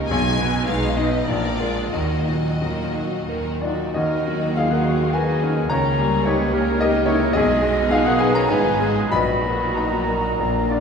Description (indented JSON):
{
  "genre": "classical",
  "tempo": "86-113 BPM",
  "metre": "3/4",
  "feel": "rubato",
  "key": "Eb minor",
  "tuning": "A4 = 439 Hz",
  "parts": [
    { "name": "bright grand piano", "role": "melody", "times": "0.0-10.8 s", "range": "Bb1 to Cb6", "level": "-21 LUFS", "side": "left 1 dB", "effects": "none" },
    { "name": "warm studio violin section", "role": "second line", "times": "0.0-10.8 s", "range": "Cb4 to Cb5", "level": "-32 LUFS", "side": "left 3 dB", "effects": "none" },
    { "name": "rich studio viola section", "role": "accompaniment", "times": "0.0-10.8 s", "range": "Eb3 to Eb4", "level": "-27 LUFS", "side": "equal", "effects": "none" },
    { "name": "rich studio cello section", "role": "bass", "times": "0.0-10.8 s", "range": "Ab2 to Eb3", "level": "-29 LUFS", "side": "right 2 dB", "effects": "none" },
    { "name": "rich studio double bass section", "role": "bass", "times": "0.0-10.8 s", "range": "Ab1 to Eb2", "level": "-28 LUFS", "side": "right 2 dB", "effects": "none" },
    { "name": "warm studio violin section", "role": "melody", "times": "0.1-10.8 s", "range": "F4 to Ab5", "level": "-30 LUFS", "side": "left 3 dB", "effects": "none" },
    { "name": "bright clarinet", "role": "second line", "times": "3.6-10.8 s", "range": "Db5 to Cb6", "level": "-30 LUFS", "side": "equal", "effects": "none" },
    { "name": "mellow hollow concert flute", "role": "second line", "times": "3.6-10.8 s", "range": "Db5 to Cb6", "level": "-29 LUFS", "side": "left 1 dB", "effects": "none" },
    { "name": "warm French horn section", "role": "sustained chords", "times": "3.6-10.8 s", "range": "Db4 to Cb5", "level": "-28 LUFS", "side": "left 4 dB", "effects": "none" },
    { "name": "clear oboe", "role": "second line", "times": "4.0-10.7 s", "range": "Gb4 to Db5", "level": "-32 LUFS", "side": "right 3 dB", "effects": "none" }
  ],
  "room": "wet scoring stage reverb, RT60 1.7 s",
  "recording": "heard from further back in the room",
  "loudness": "-18 LUFS",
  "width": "side -6 dB against mid",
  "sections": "0.0-3.9 A section; 3.9-10.8 A section",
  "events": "none",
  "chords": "0.1 Abm/Cb; 1.3 Bb7; 1.9 Ebm; 5.7 Eb7/Db; 7.3 Abm/Cb; 9.1 Ebm/Bb"
}